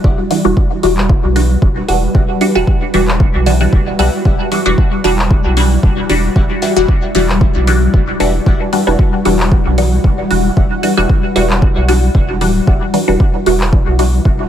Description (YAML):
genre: dub techno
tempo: 114 BPM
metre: 4/4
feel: swing 54% on 16ths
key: E minor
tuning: A4 = 439 Hz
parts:
  - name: granular cloud pad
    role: sustained chords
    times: 0.0-14.5 s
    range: G3 to F#5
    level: -20 LUFS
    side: left 1 dB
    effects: built-in reverb, sidechain pumping
  - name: wavetable chord stab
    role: riff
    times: 0.0-12.8 s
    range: G4 to F#5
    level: -28 LUFS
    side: left 3 dB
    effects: sidechain pumping, dub echo
  - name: filtered dub chord stab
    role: stabs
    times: 0.0-14.3 s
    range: E3 to F#4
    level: -16 LUFS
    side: equal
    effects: phaser, sidechain pumping, dub echo
  - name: soft dub sub bass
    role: bass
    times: 0.0-14.4 s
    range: D1 to B1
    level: -15 LUFS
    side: equal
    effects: sidechain pumping
  - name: electronic kick drum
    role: drums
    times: 0.0-14.4 s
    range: none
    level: -12 LUFS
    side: equal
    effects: none
  - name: wind-like tuned noise texture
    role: texture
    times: 0.0-14.5 s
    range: G3 to B4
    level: -27 LUFS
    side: right 1 dB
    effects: none
  - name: deep house drum kit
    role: drums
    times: 0.3-14.1 s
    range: handclaps, hi-hat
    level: -23 LUFS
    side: left 1 dB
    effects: dub echo
room: little or no reverb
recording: echo-heavy mix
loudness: -10 LUFS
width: side -10 dB against mid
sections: 0.0-14.5 A section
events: none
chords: 0.0 Em9